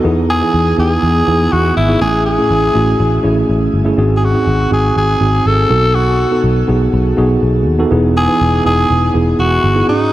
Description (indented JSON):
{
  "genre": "1980s-style pop",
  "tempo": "122 BPM",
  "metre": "4/4",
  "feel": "straight",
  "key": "unclear",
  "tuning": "A4 = 441 Hz",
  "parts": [
    { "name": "mellow tine electric piano", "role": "accompaniment", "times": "0.0-10.1 s", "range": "G#2 to B4", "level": "-14 LUFS", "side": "right 1 dB", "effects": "medium stereo tremolo, shimmer reverb" },
    { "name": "vintage muted picked electric bass", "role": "bass", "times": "0.0-9.8 s", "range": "E1 to E2", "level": "-15 LUFS", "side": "equal", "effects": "none" },
    { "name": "growling tenor saxophone", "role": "melody", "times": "0.3-10.1 s", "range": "D#4 to A4", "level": "-16 LUFS", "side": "equal", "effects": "shimmer reverb, digital delay" }
  ],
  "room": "moderate lush hall reverb, RT60 2.6 s",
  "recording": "none",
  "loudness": "-10 LUFS",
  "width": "side -14 dB against mid",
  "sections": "0.0-10.1 A section",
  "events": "none",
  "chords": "0.0 Emaj7; 2.0 Amaj7; 4.0 G#7; 5.7 B7; 7.9 Emaj7"
}